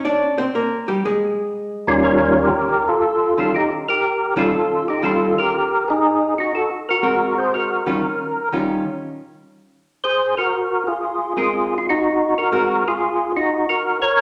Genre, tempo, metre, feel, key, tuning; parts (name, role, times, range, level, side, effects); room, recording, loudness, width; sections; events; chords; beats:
jazz; 120 BPM; 4/4; swing 69% on 8ths; A4 = 438 Hz
archtop guitar, miked and amplified; accompaniment; 0.0-12.8 s; Eb3 to D5; -24 LUFS; equal
percussive tonewheel organ; melody; 1.9-14.2 s; Eb2 to Db5; -19 LUFS; equal; slow rotary speaker, chorus vibrato
wet large studio reverb, RT60 1.4 s; -19 LUFS; mono
0.0-2.0 A section; 2.0-14.2 B section
hollow-body jazz guitar solo 0.0-2.0
0.0 Bb9; 2.0 Eb9; 6.0 Ab9; 8.0 Eb9; 10.0 Ab9
| 0.02 0.52 1.02 1.52 | 2.02 2.52 3.02 3.52 | 4.02 4.52 5.02 5.52 | 6.02 6.52 7.02 7.52 | 8.02 8.52 9.02 9.52 | 10.02 10.51 11.01 11.51 | 12.01 12.51 13.01 13.51 | 14.01